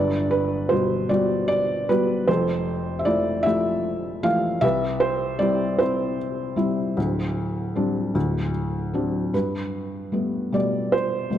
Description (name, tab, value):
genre	acoustic folk-pop ballad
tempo	51 BPM (dotted quarters)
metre	6/8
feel	straight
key	G major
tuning	A4 = 438 Hz
part	felt-muted upright piano	solo	0.0-11.4 s	D1 to F5	-21 LUFS	equal	none
room	moderate concert hall reverb, RT60 1.9 s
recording	dark, warm production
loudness	-21 LUFS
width	side -10 dB against mid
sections	0.0-9.3 A section; 9.3-11.4 B section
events	none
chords	0.0 Gmaj7; 2.3 Fmaj7; 4.6 Cmaj7; 7.0 D7sus4; 8.2 D7; 9.3 Gadd9